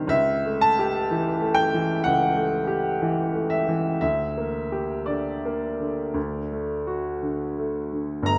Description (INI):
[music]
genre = classical, romantic nocturne for solo piano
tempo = 56-65 BPM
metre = 4/4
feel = rubato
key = unclear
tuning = A4 = 439 Hz
[part]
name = clear grand piano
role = solo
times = 0.0-8.4 s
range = G1 to Bb5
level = -25 LUFS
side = equal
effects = none
[sound]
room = moderate scoring stage reverb, RT60 1.9 s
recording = none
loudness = -25 LUFS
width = mono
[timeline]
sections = 0.0-8.3 A section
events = none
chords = 0.1 A7/C#; 4.0 Gm/D; 6.2 D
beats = | 0.11 1.11 2.04 2.99 | 4.02 5.08 6.16 7.23 | 8.28